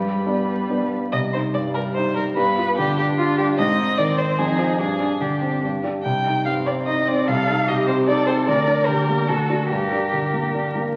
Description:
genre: quick classical-period movement for piano trio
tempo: 147 BPM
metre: 3/4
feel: uneven beats, rubato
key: C minor, G minor from 6.1 s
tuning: A4 = 438 Hz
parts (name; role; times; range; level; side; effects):
- rich violin; melody; 0.0-10.7 s; F4 to G5; -25 LUFS; equal; none
- rich cello; second line; 0.0-10.7 s; G3 to Bb4; -28 LUFS; equal; none
- warm concert grand piano; accompaniment; 0.0-11.0 s; C2 to D5; -24 LUFS; equal; none
room: wet recital hall reverb, RT60 1.5 s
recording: very old 78 rpm record, vinyl crackle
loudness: -21 LUFS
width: mono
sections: 0.0-1.1 A section; 1.1-11.0 A section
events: none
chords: 0.0 G; 1.1 Cm; 2.4 G7; 3.6 Ab; 4.4 Fm; 4.8 Gsus4; 5.6 G5; 6.1 Cm; 7.3 Adim/C; 8.5 Gm/D; 9.3 D; 9.7 Gm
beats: 0.27 0.70 | 1.13 1.55 1.96 | 2.37 2.79 3.19 | 3.58 3.98 4.38 | 4.79 5.21 5.63 | 6.05 6.46 6.88 | 7.28 7.68 8.08 | 8.47 8.87 9.28 | 9.70 10.12 10.54 | 10.96

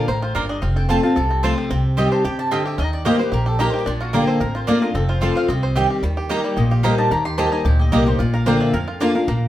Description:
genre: bluegrass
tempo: 222 BPM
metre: 4/4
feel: swing 53% on 8ths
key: unclear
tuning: A4 = 442 Hz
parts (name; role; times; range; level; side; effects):
- bluegrass banjo; melody; 0.0-9.5 s; G3 to C5; -28 LUFS; right 2 dB; none
- mandolin; melody; 0.0-9.1 s; F4 to C6; -26 LUFS; left 1 dB; none
- picked steel-string acoustic guitar; accompaniment; 0.0-9.5 s; F2 to G4; -20 LUFS; left 1 dB; none
- upright bass; bass; 0.1-9.5 s; F1 to F2; -22 LUFS; equal; none
- mandolin; stabs; 0.3-9.1 s; Bb3 to Bb5; -24 LUFS; right 3 dB; none
room: wet studio reverb, RT60 0.7 s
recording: heard from further back in the room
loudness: -16 LUFS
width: side -13 dB against mid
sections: 0.0-6.0 A section; 6.0-9.5 B section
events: none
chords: 0.0 Bb; 0.6 F; 1.7 Cm; 2.8 Eb; 3.9 Bb; 5.0 F; 5.5 Cm; 6.0 Eb; 8.2 Bb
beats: 0.08 0.35 | 0.62 0.89 1.17 1.44 | 1.71 1.98 2.25 2.52 | 2.79 3.06 3.33 3.60 | 3.87 4.14 4.41 4.68 | 4.95 5.22 5.49 5.76 | 6.03 6.30 6.58 6.84 | 7.12 7.39 7.66 7.93 | 8.20 8.47 8.74 9.01 | 9.28

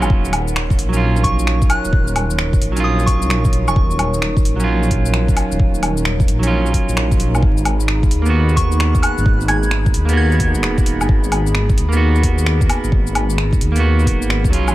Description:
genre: future garage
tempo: 131 BPM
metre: 4/4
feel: swing 64% on 16ths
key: Eb minor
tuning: A4 = 438 Hz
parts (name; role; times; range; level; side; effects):
- clean electric guitar; accompaniment; 0.0-14.7 s; Gb3 to Gb4; -22 LUFS; right 3 dB; sidechain pumping, dub echo
- dark analog pad; sustained chords; 0.0-14.7 s; Eb4 to Cb6; -25 LUFS; equal; chorus, sidechain pumping
- dark detuned saw bass; bass; 0.0-14.7 s; Eb1 to Eb2; -18 LUFS; equal; sidechain pumping
- garage drum kit; drums; 0.0-14.7 s; finger snaps, hi-hat, shaker, woodblock; -23 LUFS; left 1 dB; none
- electronic kick drum; drums; 0.1-14.5 s; none; -16 LUFS; equal; none
- soft synth bell; melody; 1.2-4.1, 8.6-10.6 s; Db6 to Ab6; -24 LUFS; equal; chorus, digital delay
room: little or no reverb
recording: vinyl crackle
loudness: -14 LUFS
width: side -16 dB against mid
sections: 0.1-14.7 A section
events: none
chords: 0.1 Ebm7; 7.4 Abm7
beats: | 0.10 0.56 1.01 1.47 | 1.93 2.39 2.85 3.30 | 3.76 4.22 4.68 5.14 | 5.59 6.05 6.51 6.97 | 7.43 7.88 8.34 8.80 | 9.26 9.72 10.17 10.63 | 11.09 11.55 12.01 12.46 | 12.92 13.38 13.84 14.30

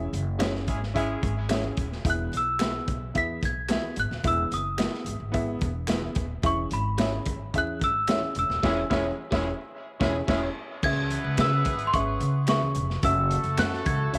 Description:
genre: uptempo 1960s-style soul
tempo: 109 BPM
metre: 4/4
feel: straight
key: unclear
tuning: A4 = 440 Hz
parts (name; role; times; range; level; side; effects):
- dark upright piano; accompaniment; 0.0-14.2 s; C#3 to E5; -34 LUFS; equal; none
- upright bass; bass; 0.0-14.2 s; D#1 to C#3; -32 LUFS; equal; none
- crunchy breakbeat drum kit; drums; 0.1-14.2 s; crash cymbal, hi-hat, kick drum, snare drum; -32 LUFS; equal; none
- congas; percussion; 0.1-14.2 s; none; -46 LUFS; equal; none
- electric guitar through a small old amp; stabs; 0.4-13.7 s; F#4 to E5; -38 LUFS; equal; none
- finger snaps; percussion; 0.4-13.7 s; none; -41 LUFS; equal; none
- clear horn section; second line; 0.7-1.3, 8.6-14.2 s; G#3 to B4; -38 LUFS; equal; tape echo
- worn celesta; melody; 2.1-14.2 s; B5 to B6; -30 LUFS; equal; none
room: light reverb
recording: none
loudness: -27 LUFS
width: mono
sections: 0.0-10.8 A section; 10.8-14.2 B section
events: band accent 0.0-2.0, 8.6-10.8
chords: 0.0 C#m; 2.0 E; 6.4 C#m; 10.8 C#m7; 13.0 F#m7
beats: 0.40 0.95 1.50 | 2.05 2.60 3.14 3.69 | 4.24 4.79 5.34 5.89 | 6.44 6.99 7.54 8.08 | 8.63 9.18 9.73 10.28 | 10.83 11.38 11.93 12.48 | 13.03 13.59 14.13

